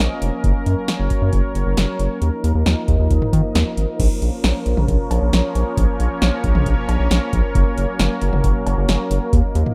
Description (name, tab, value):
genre	synth-pop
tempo	135 BPM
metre	4/4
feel	straight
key	Bb minor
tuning	A4 = 444 Hz
part	sweeping resonant pad	sustained chords	0.0-9.7 s	F3 to Eb5	-26 LUFS	equal	chorus
part	round analog bass	bass	0.0-9.6 s	F1 to Eb3	-20 LUFS	equal	none
part	electro analog drum machine	drums	0.0-9.7 s	cowbell, crash cymbal, hi-hat, kick drum, snare drum, toms	-23 LUFS	equal	none
room	little or no reverb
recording	rough home demo mix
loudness	-19 LUFS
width	mono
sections	0.0-4.0 A section; 4.0-9.7 B section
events	none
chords	0.4 Gb; 2.2 Ebsus2; 4.0 Bbm; 7.6 Gb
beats	0.00 | 0.44 0.89 1.33 1.77 | 2.22 2.66 3.11 3.55 | 4.00 4.44 4.88 5.33 | 5.77 6.22 6.66 7.11 | 7.55 8.00 8.44 8.88 | 9.33